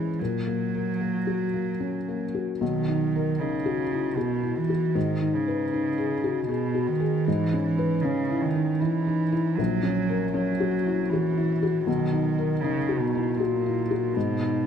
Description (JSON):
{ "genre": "neoclassical piano and strings", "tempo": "78 BPM", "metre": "3/4", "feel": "rubato", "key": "unclear", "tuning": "A4 = 440 Hz", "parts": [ { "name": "warm cello", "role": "second line", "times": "0.0-14.7 s", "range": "A#2 to F#3", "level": "-26 LUFS", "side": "right 5 dB", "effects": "slapback echo" }, { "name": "felt-muted upright piano", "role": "accompaniment", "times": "0.0-14.7 s", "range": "A#1 to B4", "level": "-26 LUFS", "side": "left 4 dB", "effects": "none" } ], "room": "light reverb", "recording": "close, detailed microphones", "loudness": "-23 LUFS", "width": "side -8 dB against mid", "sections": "0.0-2.6 A section; 2.6-14.7 A section", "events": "none", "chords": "0.2 F#/A#; 2.6 Bmaj7; 5.0 G#m; 7.3 C#m7/G#; 9.6 F#/A#; 11.9 Bmaj7; 14.2 G#m", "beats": "| 0.20 1.01 1.81 | 2.62 3.40 4.18 | 4.96 5.73 6.50 | 7.27 8.04 8.82 | 9.59 10.35 11.11 | 11.87 12.63 13.39 | 14.15" }